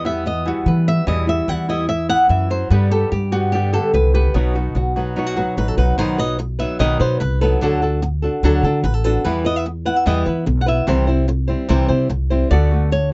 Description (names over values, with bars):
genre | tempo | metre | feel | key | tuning
flamenco | 147 BPM | 4/4 | straight | unclear | A4 = 440 Hz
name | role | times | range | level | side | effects
flamenco guitar | melody | 0.0-13.1 s | B2 to F#5 | -22 LUFS | equal | none
flamenco guitar | stabs | 0.0-6.0, 12.5-13.0 s | B2 to G4 | -28 LUFS | equal | none
upright bass | bass | 0.0-13.1 s | A1 to E3 | -21 LUFS | equal | none
room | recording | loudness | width
little or no reverb | nothing above 7.8 kHz | -18 LUFS | mono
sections
0.0-6.0 A section; 6.0-12.5 B section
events
nylon-string guitar solo 0.0-6.0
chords
0.0 Em; 2.7 G; 4.3 B; 7.6 D; 9.2 Em; 10.9 C; 12.5 D6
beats
0.26 0.67 | 1.08 1.49 1.89 2.30 | 2.71 3.12 3.53 3.94 | 4.34 4.75 5.16 5.57 | 5.98 6.39 6.80 7.21 | 7.62 8.02 8.43 8.84 | 9.25 9.66 10.06 10.47 | 10.88 11.29 11.70 12.10 | 12.51 12.92